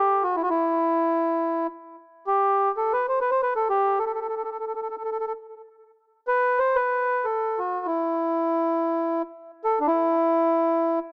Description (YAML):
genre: Arabic maqam ensemble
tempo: free time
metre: none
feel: none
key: E maqam bayati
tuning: A4 = 442 Hz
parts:
  - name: mellow accordion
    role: solo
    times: 0.0-11.0 s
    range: D4 to C5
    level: -24 LUFS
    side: equal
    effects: analog delay
room: light reverb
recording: dry, gritty hardware recording, small speaker sound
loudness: -24 LUFS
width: mono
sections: 0.0-1.9 A section; 1.9-11.1 A section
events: none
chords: none